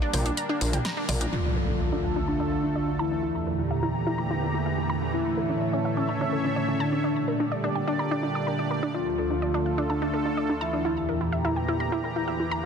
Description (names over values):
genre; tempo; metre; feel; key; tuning
melodic techno; 126 BPM; 4/4; straight; D harmonic minor; A4 = 442 Hz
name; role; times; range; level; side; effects
sweeping resonant pad; sustained chords; 0.0-12.7 s; D2 to Bb5; -29 LUFS; equal; chorus
wide unison pluck; arpeggios; 0.0-12.6 s; C#4 to D6; -31 LUFS; equal; digital delay
bowed-like drone; drone; 0.0-12.7 s; D3 to D4; -33 LUFS; right 2 dB; built-in reverb
gritty driven synth bass; bass; 0.1-1.3 s; Bb1; -27 LUFS; equal; none
house drum kit; drums; 0.1-1.3 s; hi-hat, snare drum, toms; -32 LUFS; equal; none
soft octave-layered synth lead; melody; 1.3-11.2 s; C#4 to F4; -30 LUFS; left 1 dB; chorus, ping-pong delay
impact; sound effects; 1.3-3.2 s; none; -30 LUFS; equal; none
room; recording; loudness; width
light reverb; dense, heavily limited modern master; -24 LUFS; side -6 dB against mid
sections
0.0-1.3 A section; 1.3-12.7 B section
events
band accent 0.8; impact 1.3-3.2; filter sweep on synth arpeggio sound 1.3-12.7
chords
0.0 Gm/Bb; 1.3 Dm; 3.2 Edim; 5.1 A; 7.0 Gm/Bb; 8.9 Dm; 10.8 Edim